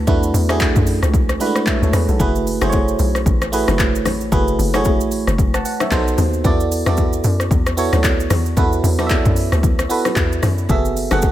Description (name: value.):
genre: amapiano.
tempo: 113 BPM.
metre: 4/4.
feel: swing 58% on 16ths.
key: unclear.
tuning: A4 = 441 Hz.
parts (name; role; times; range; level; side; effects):
FM electric piano; accompaniment; 0.0-11.3 s; G#3 to A5; -19 LUFS; right 2 dB; chorus.
tight log drum bass; bass; 0.0-11.3 s; F#1 to F#2; -19 LUFS; equal; none.
deep house drum kit; drums; 0.1-11.3 s; handclaps, hi-hat, kick drum, rim click, shaker; -19 LUFS; equal; none.
congas and bongos; percussion; 2.2-11.3 s; none; -27 LUFS; left 7 dB; none.
room: little or no reverb.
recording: none.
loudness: -14 LUFS.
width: side -13 dB against mid.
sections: 0.0-11.3 A section.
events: none.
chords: 0.0 E9sus4; 2.2 F#m11; 5.9 B7b9; 6.4 E9sus4; 10.7 F#m11.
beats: | 0.07 0.60 1.14 1.67 | 2.20 2.73 3.26 3.79 | 4.32 4.85 5.38 5.91 | 6.45 6.98 7.51 8.04 | 8.57 9.10 9.63 10.16 | 10.69 11.22.